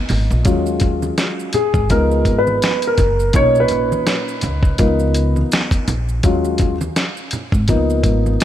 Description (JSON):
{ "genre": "hip hop, jazz-hop", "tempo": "83 BPM", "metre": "4/4", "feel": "swing 57% on 16ths", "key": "Eb minor", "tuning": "A4 = 442 Hz", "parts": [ { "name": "dark concert grand piano", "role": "accompaniment", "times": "0.0-8.4 s", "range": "A#2 to C#5", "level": "-18 LUFS", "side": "left 1 dB", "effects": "wide subtle chorus" }, { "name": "upright bass", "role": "bass", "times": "0.1-8.3 s", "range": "Gb1 to Eb2", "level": "-19 LUFS", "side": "equal", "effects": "none" }, { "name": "dusty soul sampler-style drum kit", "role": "drums", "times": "0.1-8.4 s", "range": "hi-hat, kick drum, snare drum", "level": "-18 LUFS", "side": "equal", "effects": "none" }, { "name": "congas and maracas", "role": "percussion", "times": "0.1-8.4 s", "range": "none", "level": "-28 LUFS", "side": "right 2 dB", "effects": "none" } ], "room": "light reverb, studio ambience", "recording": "vinyl crackle", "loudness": "-14 LUFS", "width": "side -11 dB against mid", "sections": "0.4-8.4 A section", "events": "grand piano solo 0.4-8.4", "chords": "0.4 Ebm11; 1.9 Db9; 3.3 Bmaj9; 4.8 Db13; 6.2 Ebm11; 7.7 Db13", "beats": "| 0.45 1.17 1.90 2.62 | 3.34 4.06 4.79 5.51 | 6.23 6.96 7.68 8.40" }